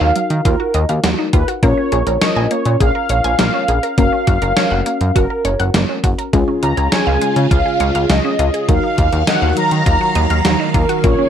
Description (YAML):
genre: synth-pop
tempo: 102 BPM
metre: 4/4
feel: straight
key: unclear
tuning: A4 = 440 Hz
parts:
  - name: mellow synth brass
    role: melody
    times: 0.0-11.3 s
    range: A#4 to A#5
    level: -19 LUFS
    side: right 1 dB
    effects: chorus, analog delay
  - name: mellow FM electric piano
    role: accompaniment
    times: 0.0-11.3 s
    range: C#4 to A#4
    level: -22 LUFS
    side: left 4 dB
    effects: chorus
  - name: resonant blip pluck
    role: arpeggios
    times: 0.0-11.3 s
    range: F#3 to G#5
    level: -22 LUFS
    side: right 1 dB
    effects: phaser, analog delay
  - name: chorused synth bass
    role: bass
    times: 0.0-11.1 s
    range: F#1 to D#3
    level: -17 LUFS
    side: equal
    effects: none
  - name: gated 80s digital drum machine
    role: drums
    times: 0.2-11.2 s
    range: hi-hat, kick drum, snare drum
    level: -17 LUFS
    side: equal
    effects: gated reverb, gated reverb snare, overdrive
  - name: phased string machine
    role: sustained chords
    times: 6.3-11.3 s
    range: C#3 to E#5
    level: -21 LUFS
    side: right 2 dB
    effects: ensemble chorus, phaser
room: light reverb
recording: none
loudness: -13 LUFS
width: side -9 dB against mid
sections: 0.0-11.3 A section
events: none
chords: 0.0 D#madd9; 1.6 A#m7; 4.0 F#; 6.3 C#; 8.7 D#madd9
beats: 0.45 1.04 | 1.63 2.21 2.80 3.39 | 3.98 4.57 5.16 5.74 | 6.33 6.92 7.51 8.10 | 8.69 9.27 9.86 10.45 | 11.04